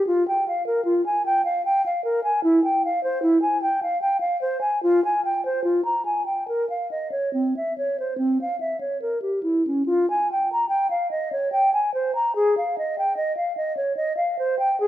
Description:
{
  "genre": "classical, baroque-style fantasia for unaccompanied flute",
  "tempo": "67-77 BPM",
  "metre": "3/4",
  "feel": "rubato",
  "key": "F minor",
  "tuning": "A4 = 440 Hz",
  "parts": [
    { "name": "mellow hollow silver concert flute", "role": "solo", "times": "0.0-14.9 s", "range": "C4 to Bb5", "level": "-20 LUFS", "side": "equal", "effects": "none" }
  ],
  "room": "moderate recital hall reverb, RT60 1.6 s",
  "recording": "minimal, uncompressed stereo recording",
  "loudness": "-20 LUFS",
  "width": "side -13 dB against mid",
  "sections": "0.0-9.9 A section; 9.9-14.9 B section",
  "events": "none",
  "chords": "none"
}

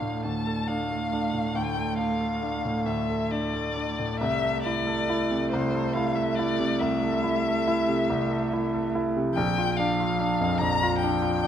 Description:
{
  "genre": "classical, slow romantic movement for piano trio",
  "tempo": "44-49 BPM (dotted quarters)",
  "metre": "12/8",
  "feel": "rubato",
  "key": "D minor",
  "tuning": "A4 = 445 Hz",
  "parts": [
    { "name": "rich violin", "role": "melody", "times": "0.0-11.5 s", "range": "C5 to Bb5", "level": "-29 LUFS", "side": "left 4 dB", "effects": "none" },
    { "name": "rich cello", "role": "second line", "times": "0.0-11.5 s", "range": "F3 to A3", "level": "-32 LUFS", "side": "right 6 dB", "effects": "none" },
    { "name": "bright grand piano", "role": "accompaniment", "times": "0.0-11.5 s", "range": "Bb1 to A4", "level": "-26 LUFS", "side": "equal", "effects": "none" }
  ],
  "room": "moderate scoring stage reverb, RT60 1.8 s",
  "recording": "none",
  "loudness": "-24 LUFS",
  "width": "side -9 dB against mid",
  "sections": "0.0-11.5 A section",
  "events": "none",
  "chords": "0.0 Dm; 4.2 Am/C; 9.4 Bb"
}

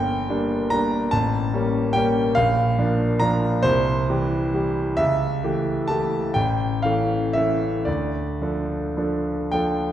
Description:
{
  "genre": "classical, romantic nocturne for solo piano",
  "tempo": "35-50 BPM (dotted quarters)",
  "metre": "12/8",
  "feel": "rubato",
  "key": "unclear",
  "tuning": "A4 = 440 Hz",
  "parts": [
    { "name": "clear concert grand piano", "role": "solo", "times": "0.0-9.9 s", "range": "G1 to Bb5", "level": "-20 LUFS", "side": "equal", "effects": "none" }
  ],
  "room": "wet concert hall reverb, RT60 1.8 s",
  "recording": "heard from further back in the room",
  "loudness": "-20 LUFS",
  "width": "side -11 dB against mid",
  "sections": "0.0-9.9 A section",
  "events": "none",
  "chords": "0.0 Gm; 1.1 A7b9; 2.4 Bb; 3.6 C; 5.0 A7/C#; 6.4 A; 7.9 Dm"
}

